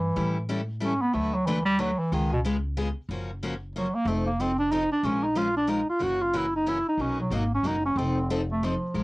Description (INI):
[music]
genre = acoustic string swing (jazz manouche)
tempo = 185 BPM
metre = 3/4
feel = swing 59% on 8ths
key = F# major from 3.1 s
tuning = A4 = 440 Hz
[part]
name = warm bass clarinet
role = melody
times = 0.0-9.0 s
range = B2 to F#4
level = -25 LUFS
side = right 1 dB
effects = cassette tape
[part]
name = upright bass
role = bass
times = 0.0-9.0 s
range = F1 to A2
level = -32 LUFS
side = equal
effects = none
[part]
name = picked steel-string acoustic guitar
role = accompaniment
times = 0.2-9.0 s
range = B2 to B4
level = -31 LUFS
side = left 2 dB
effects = cassette tape
[sound]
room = moderate booth ambience, RT60 0.3 s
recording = home recording on cassette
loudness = -24 LUFS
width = side -22 dB against mid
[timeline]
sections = 0.0-3.1 A section; 3.1-9.0 A section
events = bass clarinet solo 0.0-9.0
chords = 0.2 A7; 1.1 D6; 2.1 C#7; 3.1 F#maj7; 4.1 F7; 5.0 A#m7; 6.0 F#7; 7.0 Bmaj7; 8.0 F7